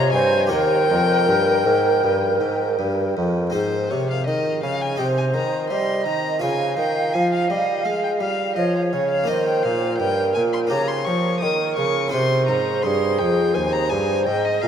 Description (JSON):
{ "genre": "classical, baroque-style sonata movement with continuo", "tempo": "84 BPM", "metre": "4/4", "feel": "straight", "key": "Ab major", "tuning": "A4 = 440 Hz", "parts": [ { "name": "dark violin", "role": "melody", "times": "0.0-14.7 s", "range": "C5 to Eb6", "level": "-25 LUFS", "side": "left 5 dB", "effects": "none" }, { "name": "hollow concert flute", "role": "second line", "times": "0.0-14.7 s", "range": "Ab4 to F5", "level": "-22 LUFS", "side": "right 2 dB", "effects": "none" }, { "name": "harpsichord", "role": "accompaniment", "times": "0.0-14.7 s", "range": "Eb2 to Eb5", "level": "-25 LUFS", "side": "left 1 dB", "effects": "none" }, { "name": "clear bassoon", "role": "bass", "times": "0.0-14.7 s", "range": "Eb2 to Ab3", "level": "-25 LUFS", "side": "right 2 dB", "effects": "none" } ], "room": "wet huge ambient reverb, RT60 7.6 s", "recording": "in a vast, echoing space, vinyl crackle", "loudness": "-18 LUFS", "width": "side -8 dB against mid", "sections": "0.0-3.5 A section; 3.5-14.7 A section", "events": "none", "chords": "0.0 Fm; 0.5 Eb; 3.5 Ab; 5.0 Cm; 6.4 Db; 9.3 Eb; 10.7 Eb7/Db; 12.1 Ab" }